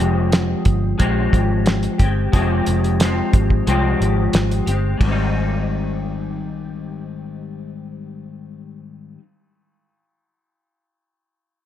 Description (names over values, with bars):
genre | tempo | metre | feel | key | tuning
indie pop, bedroom pop | 90 BPM | 4/4 | straight | Ab major | A4 = 440 Hz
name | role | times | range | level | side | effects
electric guitar through a small old amp | accompaniment | 0.0-9.2 s | Ab2 to G4 | -21 LUFS | left 2 dB | ensemble chorus, warbly pitch drift
vintage muted fingered electric bass | bass | 0.0-9.1 s | F1 to C2 | -20 LUFS | equal | none
cloth-damped thuddy drum kit | drums | 0.3-5.2 s | hi-hat, kick drum, ride cymbal, snare drum | -18 LUFS | equal | none
room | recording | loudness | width
small room ambience | none | -16 LUFS | side -11 dB against mid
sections
0.0-5.0 A section; 5.0-7.7 B section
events
none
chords
0.0 Fmadd9; 5.0 Abmaj7